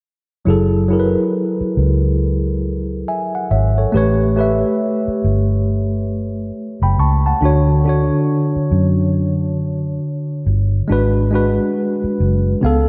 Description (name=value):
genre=R&B, neo-soul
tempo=69 BPM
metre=4/4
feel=swing 62% on 16ths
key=F# minor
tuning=A4 = 439 Hz
part: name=mellow tine electric piano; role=accompaniment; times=0.5-12.9 s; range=C#3 to C#6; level=-20 LUFS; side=equal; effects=none
part: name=vintage muted fingered electric bass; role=bass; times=0.5-12.9 s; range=F#1 to F#2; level=-19 LUFS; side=equal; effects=none
room=moderate lush hall reverb, RT60 2.4 s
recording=dreamy mix soaked in reverb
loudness=-17 LUFS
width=mono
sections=0.5-12.9 A section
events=none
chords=0.5 F#m9; 3.9 A9; 7.4 Dmaj7; 10.9 G#m7b5